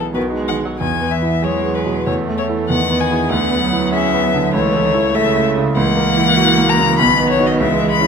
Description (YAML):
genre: quick classical-period movement for piano quartet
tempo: 98 BPM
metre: 2/4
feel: straight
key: E major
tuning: A4 = 440 Hz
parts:
  - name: warm violin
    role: melody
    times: 0.0-8.1 s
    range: B4 to B5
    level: -18 LUFS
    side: left 7 dB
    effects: none
  - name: warm cello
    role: second line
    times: 0.0-8.1 s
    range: C#3 to F#3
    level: -21 LUFS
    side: right 6 dB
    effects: none
  - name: clear concert grand piano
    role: accompaniment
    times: 0.0-8.1 s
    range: B1 to A4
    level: -18 LUFS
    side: right 1 dB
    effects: none
  - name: warm viola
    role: accompaniment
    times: 0.0-8.1 s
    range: D#3 to C#4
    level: -23 LUFS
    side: right 3 dB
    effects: none
room: wet recital hall reverb, RT60 1.6 s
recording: none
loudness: -13 LUFS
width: side -6 dB against mid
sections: 0.8-8.1 A section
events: none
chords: 0.2 B; 0.8 E; 2.1 A5/E; 2.7 E; 3.3 E7/D; 4.5 A/C#; 5.8 F#7/C#; 7.0 B